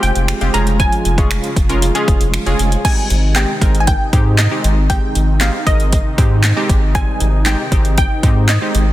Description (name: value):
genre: dance-pop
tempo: 117 BPM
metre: 4/4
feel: straight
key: Ab major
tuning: A4 = 440 Hz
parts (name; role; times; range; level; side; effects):
- wide unison pluck; melody; 0.0-8.9 s; Eb5 to Bb5; -22 LUFS; right 1 dB; tape echo
- funky polysynth comp; accompaniment; 0.0-8.9 s; G3 to Bb4; -22 LUFS; right 1 dB; chorus, sidechain pumping
- filtered supersaw swell; sustained chords; 0.0-8.9 s; C3 to G4; -24 LUFS; equal; sidechain pumping
- soft round pluck; arpeggios; 0.0-2.6 s; F3 to Ab6; -29 LUFS; left 2 dB; none
- saturated sub bass; bass; 0.0-8.9 s; F1 to Ab2; -15 LUFS; equal; sidechain pumping
- deep house drum kit; drums; 0.0-8.9 s; crash cymbal, finger snaps, handclaps, hi-hat, kick drum, snare drum; -16 LUFS; equal; overdrive
room: light reverb, digital ambience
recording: dense, heavily limited modern master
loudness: -12 LUFS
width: side -14 dB against mid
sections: 0.0-2.8 A section; 2.8-8.9 B section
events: none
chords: 0.0 Fmadd9; 0.5 Db/F; 2.8 Abmaj7